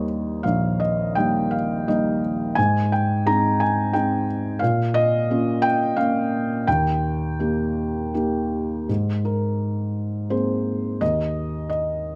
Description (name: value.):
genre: classical, lyrical solo piano.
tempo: 77-90 BPM.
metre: 3/4.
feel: rubato.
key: Ab major.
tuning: A4 = 440 Hz.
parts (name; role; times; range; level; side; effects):
felt-muted upright piano; solo; 0.0-12.2 s; Bb1 to Bb5; -22 LUFS; equal; none.
room: light reverb.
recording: close, detailed microphones.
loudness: -22 LUFS.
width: mono.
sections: 0.0-8.9 A section; 8.9-12.2 B section.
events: none.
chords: 0.0 Eb; 2.6 Ab; 4.6 Bbm; 6.7 Eb; 8.9 Abadd9; 11.0 N.C..